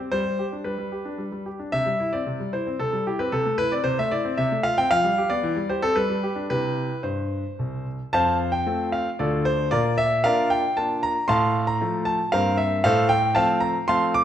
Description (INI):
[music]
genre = classical-period piano sonatina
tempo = 114 BPM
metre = 3/4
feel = straight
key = C major, F major from 8.1 s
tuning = A4 = 439 Hz
[part]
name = warm grand piano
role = solo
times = 0.0-14.2 s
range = C2 to D6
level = -21 LUFS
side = equal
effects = none
[sound]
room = moderate recital hall reverb, RT60 1.4 s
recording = none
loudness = -21 LUFS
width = side -10 dB against mid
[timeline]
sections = 0.0-8.1 A section; 8.1-14.2 B section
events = none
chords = 0.1 G; 1.7 C; 3.3 Am/C; 4.4 F/C; 4.9 G7/F; 5.4 C/E; 6.0 G; 6.5 C; 8.1 F; 9.2 Dm; 9.7 Bb; 11.3 F/A; 12.3 C7/G; 12.8 F/A